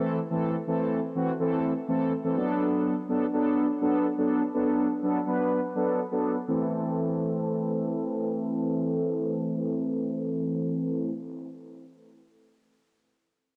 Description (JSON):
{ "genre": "pop", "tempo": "124 BPM", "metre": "4/4", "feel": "straight", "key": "A dorian", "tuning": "A4 = 441 Hz", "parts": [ { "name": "mellow synth brass", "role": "solo", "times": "0.0-11.1 s", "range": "E3 to B4", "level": "-28 LUFS", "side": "equal", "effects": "chorus, low-pass filter, cassette tape, analog delay" } ], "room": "moderate lush hall reverb, RT60 2.6 s", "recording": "home recording on cassette", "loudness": "-28 LUFS", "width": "mono", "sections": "0.0-6.5 A section; 6.5-10.3 B section", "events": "filter sweep on analog polysynth 0.0-6.5", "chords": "0.0 Am; 2.4 D6; 6.5 Am" }